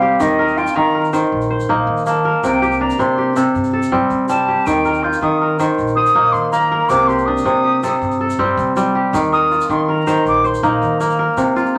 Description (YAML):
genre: west african traditional, West African string and xylophone music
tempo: 107 BPM (dotted quarters)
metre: 12/8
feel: straight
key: unclear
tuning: A4 = 440 Hz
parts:
  - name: silver concert flute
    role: melody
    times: 0.0-11.4 s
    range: Eb5 to G6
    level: -20 LUFS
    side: equal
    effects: none
  - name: kora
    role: arpeggios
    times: 0.0-11.8 s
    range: C3 to C5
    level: -18 LUFS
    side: equal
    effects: none
  - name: upright bass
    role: bass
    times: 0.0-11.8 s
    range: Bb1 to Eb3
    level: -29 LUFS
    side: equal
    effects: none
  - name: egg shaker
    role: percussion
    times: 0.2-11.7 s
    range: none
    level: -43 LUFS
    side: equal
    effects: none
room: wet studio reverb, RT60 0.5 s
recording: vinyl crackle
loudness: -16 LUFS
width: mono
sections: 0.0-11.4 A section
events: flute solo 0.0-11.4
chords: 0.2 Eb; 2.4 C5; 4.7 Eb; 6.9 Cm; 9.1 Eb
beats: | 0.20 0.75 1.31 1.87 | 2.43 2.99 3.54 4.10 | 4.66 5.22 5.78 6.34 | 6.90 7.46 8.02 8.58 | 9.14 9.70 10.26 10.82 | 11.38